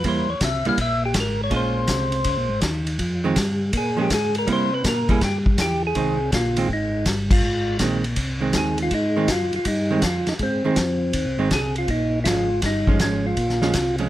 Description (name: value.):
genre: soul jazz organ trio.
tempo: 162 BPM.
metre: 4/4.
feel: swing 66% on 8ths.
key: F minor.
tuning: A4 = 444 Hz.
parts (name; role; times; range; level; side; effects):
percussive tonewheel organ; melody; 0.0-14.0 s; C4 to F5; -24 LUFS; left 1 dB; slow rotary speaker.
archtop guitar, miked and amplified; accompaniment; 0.0-14.1 s; Eb3 to F4; -24 LUFS; right 4 dB; none.
tonewheel organ; bass; 0.0-14.1 s; G1 to C3; -25 LUFS; equal; chorus vibrato, slow rotary speaker.
vintage drum kit; drums; 0.0-14.0 s; crash cymbal, hi-hat, kick drum, ride cymbal, snare drum; -24 LUFS; equal; none.
room: little or no reverb.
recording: none.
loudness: -19 LUFS.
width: side -14 dB against mid.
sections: 0.0-6.0 A section; 6.0-14.1 B section.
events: tonewheel organ solo 0.0-6.0; band accent 7.2.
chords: 0.0 C7; 1.5 Bbm7; 3.0 Fm7; 3.7 Bbm7; 4.5 C7; 6.0 Fm7; 11.9 Bbm7.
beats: | 0.04 0.41 0.78 1.15 | 1.52 1.89 2.26 2.62 | 2.99 3.36 3.73 4.10 | 4.47 4.84 5.21 5.58 | 5.95 6.32 6.69 7.06 | 7.43 7.80 8.17 8.54 | 8.92 9.29 9.66 10.03 | 10.40 10.77 11.14 11.52 | 11.89 12.26 12.63 13.00 | 13.37 13.74.